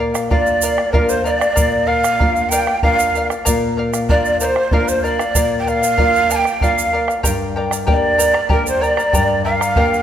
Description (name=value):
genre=andean folk, Andean ensemble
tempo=95 BPM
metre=3/4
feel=straight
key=unclear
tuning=A4 = 440 Hz
part: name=charango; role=accompaniment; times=0.0-10.0 s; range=G4 to Bb5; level=-21 LUFS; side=left 1 dB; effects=none
part: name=nylon-string guitar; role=accompaniment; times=0.0-10.0 s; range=G2 to G4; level=-22 LUFS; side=left 4 dB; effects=none
part: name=tube shaker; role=percussion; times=0.1-10.0 s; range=none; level=-25 LUFS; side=right 6 dB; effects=none
part: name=bombo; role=percussion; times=0.2-9.9 s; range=none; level=-21 LUFS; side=right 1 dB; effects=none
part: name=breathy large quena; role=melody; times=0.3-10.0 s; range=Bb4 to A5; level=-18 LUFS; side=right 3 dB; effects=none
part: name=breathy bright large pan pipes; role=second line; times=0.3-10.0 s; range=Bb4 to G5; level=-22 LUFS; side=left 3 dB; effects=none
room=moderate scoring stage reverb, RT60 1.8 s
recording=none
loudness=-14 LUFS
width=side -10 dB against mid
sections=0.0-10.0 A section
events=none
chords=0.0 Bb; 7.2 Gm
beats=0.32 0.95 | 1.58 2.21 2.84 | 3.47 4.10 4.73 | 5.36 5.99 6.62 | 7.25 7.88 8.51 | 9.14 9.77